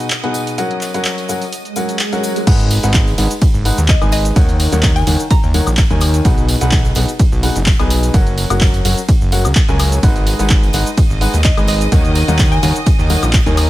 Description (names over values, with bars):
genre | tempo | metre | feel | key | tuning
piano house | 127 BPM | 4/4 | swing 54% on 16ths | unclear | A4 = 438 Hz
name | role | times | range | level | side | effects
clear symphonic violin section | sustained chords | 0.0-2.5, 10.0-13.7 s | D#5 to D#6 | -27 LUFS | right 2 dB | sidechain pumping
warm upright piano | riff | 0.0-13.7 s | B2 to G#5 | -20 LUFS | left 1 dB | sidechain pumping, ping-pong delay
punchy analog drum machine | drums | 0.0-13.7 s | crash cymbal, handclaps, hi-hat, ride cymbal, shaker, woodblock | -21 LUFS | equal | none
tambourine | percussion | 0.0-13.7 s | none | -30 LUFS | left 2 dB | none
swell | sound effects | 1.7-2.5 s | none | -23 LUFS | right 3 dB | none
fat analog bass | bass | 2.5-13.7 s | F#1 to D#2 | -16 LUFS | equal | sidechain pumping
electronic kick drum | drums | 2.5-13.4 s | none | -14 LUFS | equal | none
mallet-like synth pluck | melody | 3.9-6.0, 11.4-12.9 s | D#5 to A#5 | -25 LUFS | left 2 dB | chorus, phaser, ping-pong delay
room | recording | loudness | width
digital ambience | none | -11 LUFS | side -16 dB against mid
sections
0.0-2.5 A section; 2.5-13.7 B section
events
swell 1.7-2.5; drop 2.5-13.7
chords
0.0 B6; 0.6 F#; 2.5 G#m7; 4.4 D#m7; 6.3 B6; 8.1 F#; 10.0 G#m7; 11.9 D#m7